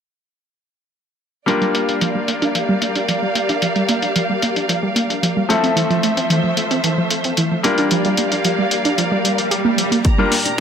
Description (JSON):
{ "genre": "nu-disco, nu disco", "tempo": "112 BPM", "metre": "4/4", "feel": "straight", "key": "G dorian", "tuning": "A4 = 440 Hz", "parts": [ { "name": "bright grand piano", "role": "accompaniment", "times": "1.5-10.3 s", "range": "F3 to Bb4", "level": "-21 LUFS", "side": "left 3 dB", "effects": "sidechain pumping, ping-pong delay" }, { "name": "dark studio string section", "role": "sustained chords", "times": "1.5-10.6 s", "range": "F3 to Bb5", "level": "-21 LUFS", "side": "equal", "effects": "vintage 12-bit sampler grit, sidechain pumping" }, { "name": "wide unison pluck", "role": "arpeggios", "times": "1.5-10.5 s", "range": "E3 to Bb4", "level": "-20 LUFS", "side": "right 2 dB", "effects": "sidechain pumping, tape echo" }, { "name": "electronic hi-hat", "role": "drums", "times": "1.5-10.6 s", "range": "none", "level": "-22 LUFS", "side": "left 1 dB", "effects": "high-pass filter on hats, low-pass filter on hats, high-pass filter on snare, low-pass filter on snare" }, { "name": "swell and riser", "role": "sound effects", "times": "9.2-10.6 s", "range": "none", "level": "-24 LUFS", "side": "right 1 dB", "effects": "none" }, { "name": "chorused synth bass", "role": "bass", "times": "10.0-10.5 s", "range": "F1 to G1", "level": "-35 LUFS", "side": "left 1 dB", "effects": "none" }, { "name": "electronic kick drum", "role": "drums", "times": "10.1-10.2 s", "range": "none", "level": "-15 LUFS", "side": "equal", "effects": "none" } ], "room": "moderate echo chamber reverb, RT60 1.6 s, digital ambience", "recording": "none", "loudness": "-15 LUFS", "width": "side -7 dB against mid", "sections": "1.5-10.1 A section", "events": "filter sweep on synth arpeggio sound 1.5-10.1; swell 9.2-10.1", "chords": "1.5 Gm7; 5.5 Fmaj7; 7.6 Bb6" }